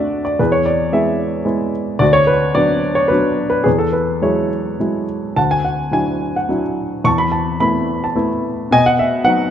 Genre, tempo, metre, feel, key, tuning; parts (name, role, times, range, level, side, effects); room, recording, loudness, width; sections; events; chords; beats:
classical, lyrical solo piano; 109 BPM; 3/4; rubato; A4 = 441 Hz
warm baby grand piano; solo; 0.0-9.5 s; D2 to C#6; -14 LUFS; equal
moderate recital hall reverb, RT60 1.5 s; dark, warm production, nothing above 10.5 kHz; -14 LUFS; side -9 dB against mid
0.0-9.5 A section
0.4 E; 2.0 Bm/D; 3.7 Eadd9; 5.4 Dadd9; 7.1 Esus4; 8.7 B
| 0.40 0.94 1.47 | 2.01 2.56 3.11 | 3.66 4.23 4.80 | 5.37 5.93 6.49 | 7.06 7.62 8.17 | 8.71 9.25